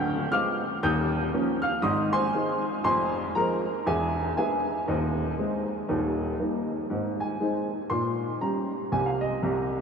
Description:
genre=jazz, stride piano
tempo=119 BPM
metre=4/4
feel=swing 59% on 8ths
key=Ab major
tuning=A4 = 440 Hz
part: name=clear upright piano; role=solo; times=0.0-9.8 s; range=D1 to G6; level=-25 LUFS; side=equal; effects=lush chorus, analog delay
room=wet huge ambient reverb, RT60 8.2 s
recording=dreamy mix soaked in reverb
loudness=-25 LUFS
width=side -6 dB against mid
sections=0.0-6.9 A section; 6.9-9.8 B section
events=none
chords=0.0 Ddim7; 0.8 Eb9; 1.8 Ab; 2.9 Fm; 3.9 E7; 4.9 Ab/Eb; 5.9 Eb; 6.9 Ab; 7.9 Gdim/Bb; 8.9 Ab/C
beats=0.32 | 0.83 1.33 1.84 2.35 | 2.85 3.36 3.87 4.37 | 4.88 5.38 5.89 6.39 | 6.90 7.41 7.91 8.42 | 8.93 9.43

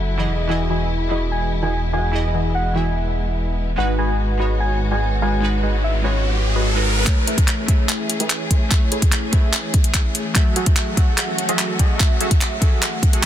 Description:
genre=future bass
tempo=146 BPM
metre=4/4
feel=half-time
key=unclear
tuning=A4 = 437 Hz
part: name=glassy digital keys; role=accompaniment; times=0.0-13.3 s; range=E3 to F#5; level=-26 LUFS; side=right 1 dB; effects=chorus, sidechain pumping, dub echo
part: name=warm symphonic string section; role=sustained chords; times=0.0-13.3 s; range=C#3 to G#4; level=-31 LUFS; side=left 3 dB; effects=sidechain pumping, low-pass filter
part: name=wide detuned saw bass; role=bass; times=0.0-7.0 s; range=E1 to G#1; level=-21 LUFS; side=equal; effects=chorus, sidechain pumping
part: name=soft octave-layered synth lead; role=melody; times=0.5-6.3 s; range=C#5 to G#5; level=-27 LUFS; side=left 1 dB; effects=chorus, sidechain pumping, dub echo
part: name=supersaw stab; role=riff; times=0.5-13.2 s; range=E3 to B5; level=-26 LUFS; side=right 1 dB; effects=sidechain pumping, low-pass filter
part: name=riser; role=sound effects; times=5.2-7.1 s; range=none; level=-26 LUFS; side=equal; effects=none
part: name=electronic kick drum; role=drums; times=7.1-13.3 s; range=none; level=-16 LUFS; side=equal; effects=none
part: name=pop drum kit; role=drums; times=7.1-13.3 s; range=handclaps, hi-hat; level=-22 LUFS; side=equal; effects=high-pass filter on hats, soft clipping on snare, high-pass filter on snare
room=little or no reverb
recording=dense, heavily limited modern master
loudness=-17 LUFS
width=side -11 dB against mid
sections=0.0-7.1 A section; 7.1-13.3 B section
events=riser 5.2-7.1; build-up 7.1-13.3; drum fill 7.1-13.3; filter sweep on supersaw synth 7.1-13.3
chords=0.3 Emaj7; 3.8 G#m7; 7.1 Amaj7; 10.4 F#m7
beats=0.08 | 0.49 0.91 1.32 1.73 | 2.14 2.55 2.96 3.37 | 3.78 4.19 4.60 5.01 | 5.42 5.84 6.25 6.66 | 7.07 7.48 7.89 8.30 | 8.71 9.12 9.54 9.95 | 10.36 10.77 11.18 11.59 | 12.00 12.41 12.82 13.23

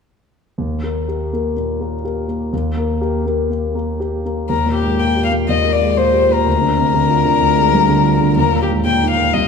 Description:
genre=quick classical-period movement for piano quintet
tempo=124 BPM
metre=4/4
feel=rubato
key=Eb major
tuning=A4 = 440 Hz
part: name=warm concert grand piano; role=accompaniment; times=0.6-9.5 s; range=C2 to Bb4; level=-16 LUFS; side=equal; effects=none
part: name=dark violin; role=melody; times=4.5-9.5 s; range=G4 to G5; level=-16 LUFS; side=left 6 dB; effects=none
room=moderate concert hall reverb, RT60 2.0 s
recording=none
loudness=-14 LUFS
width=side -5 dB against mid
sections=0.6-4.5 A section; 4.5-9.5 B section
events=none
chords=0.6 Eb; 6.5 Bb7/D; 8.4 Eb5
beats=| 0.57 1.07 1.56 2.04 | 2.52 3.01 3.50 3.99 | 4.50 5.00 5.49 5.98 | 6.46 6.94 7.42 7.89 | 8.37 8.86 9.34

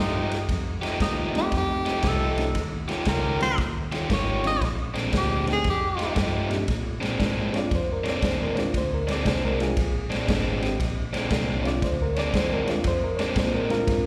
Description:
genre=electric blues shuffle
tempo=116 BPM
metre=4/4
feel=swing 66% on 8ths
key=Bb mixolydian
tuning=A4 = 437 Hz
part: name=clear tenor saxophone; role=melody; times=0.0-6.2 s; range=Eb4 to Eb5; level=-30 LUFS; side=equal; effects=slapback echo
part: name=crunchy overdriven guitar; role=riff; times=0.0-13.8 s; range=Bb2 to G4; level=-31 LUFS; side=equal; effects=slapback echo
part: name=vintage muted fingered electric bass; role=bass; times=0.0-14.1 s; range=Ab1 to Bb2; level=-32 LUFS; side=equal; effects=none
part: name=vintage drum kit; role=drums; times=0.3-14.0 s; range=kick drum, ride cymbal, snare drum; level=-31 LUFS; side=equal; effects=none
part: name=overdriven reed electric piano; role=accompaniment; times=1.3-14.1 s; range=Bb2 to D5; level=-31 LUFS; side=equal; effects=slapback echo
room=light reverb, small room ambience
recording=live gig heard through the venue's PA, recital hall reverb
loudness=-25 LUFS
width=mono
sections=0.0-6.7 A section; 6.7-14.1 B section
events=none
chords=0.0 F9; 2.6 Eb9; 4.6 Bb9; 5.6 F9; 6.7 Bb9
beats=| 0.48 1.00 1.52 2.04 | 2.55 3.07 3.58 4.10 | 4.62 5.13 5.65 6.16 | 6.68 7.20 7.71 8.22 | 8.74 9.25 9.77 10.28 | 10.80 11.31 11.82 12.34 | 12.85 13.37 13.88

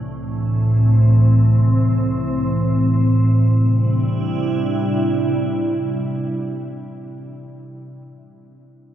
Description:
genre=ambient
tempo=free time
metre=none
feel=none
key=C major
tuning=A4 = 440 Hz
part: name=glassy FM pad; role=sustained chords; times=0.0-6.6 s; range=C2 to E4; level=-16 LUFS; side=equal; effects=ensemble chorus, built-in reverb
room=wet cathedral reverb, RT60 5.1 s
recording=in a vast, echoing space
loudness=-15 LUFS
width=side -11 dB against mid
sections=0.0-3.3 A section; 3.3-5.8 B section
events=filter sweep on ambient pad 0.0-3.3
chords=0.0 Am/C; 3.3 C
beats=free time

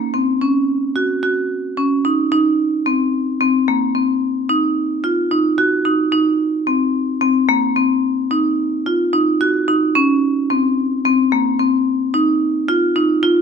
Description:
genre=progressive instrumental, progressive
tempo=110 BPM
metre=7/4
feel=straight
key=unclear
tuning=A4 = 440 Hz
part: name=marimba with hard mallets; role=solo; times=0.0-13.4 s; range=Bb3 to Gb4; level=-15 LUFS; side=equal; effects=none
room=moderate studio reverb, RT60 0.8 s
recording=none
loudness=-15 LUFS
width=side -6 dB against mid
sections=0.0-2.3 A section; 2.3-13.4 B section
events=none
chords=none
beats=0.14 0.69 1.23 1.78 | 2.32 2.87 3.41 3.96 4.50 5.04 5.59 | 6.13 6.68 7.22 7.77 8.32 8.86 9.41 | 9.96 10.50 11.05 11.60 12.14 12.69 13.24

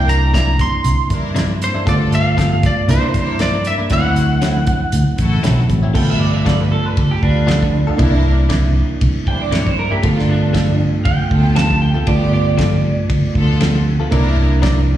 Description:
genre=straight-eighth soul blues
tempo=118 BPM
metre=4/4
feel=swing 55% on 16ths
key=G mixolydian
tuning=A4 = 440 Hz
part: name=lightly driven lead guitar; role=melody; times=0.0-5.4 s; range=C5 to C6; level=-20 LUFS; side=equal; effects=slapback echo
part: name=overdriven reed electric piano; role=accompaniment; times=0.0-15.0 s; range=F#3 to F#4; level=-23 LUFS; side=right 4 dB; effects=slapback echo
part: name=rich studio string section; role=sustained chords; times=0.0-14.6 s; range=B3 to C5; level=-28 LUFS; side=left 1 dB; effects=none
part: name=fingered electric bass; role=bass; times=0.0-14.9 s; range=G1 to G2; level=-16 LUFS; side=equal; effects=none
part: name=warm soul drum kit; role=drums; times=0.1-14.8 s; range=crash cymbal, hi-hat, kick drum, ride cymbal, snare drum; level=-20 LUFS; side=equal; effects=none
part: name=direct-recorded clean electric guitar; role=stabs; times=0.3-14.8 s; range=C3 to D5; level=-26 LUFS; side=left 8 dB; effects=slapback echo
part: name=electric guitar through a small old amp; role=second line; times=6.0-13.3 s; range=D4 to A5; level=-22 LUFS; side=right 4 dB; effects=lush chorus, slapback echo
room=small room ambience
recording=live gig heard through the venue's PA, recital hall reverb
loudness=-13 LUFS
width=side -12 dB against mid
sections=0.0-6.0 A section; 6.0-15.0 B section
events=clean electric guitar solo 6.0-15.0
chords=0.0 C9; 1.9 G9; 2.9 C9; 3.9 D9; 6.0 G9; 8.0 C9; 10.0 G9; 14.1 C9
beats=0.33 0.84 1.35 | 1.86 2.37 2.88 3.40 | 3.91 4.42 4.93 5.44 | 5.95 6.46 6.97 7.48 | 7.99 8.50 9.01 9.53 | 10.04 10.55 11.06 11.57 | 12.08 12.59 13.10 13.61 | 14.12 14.63

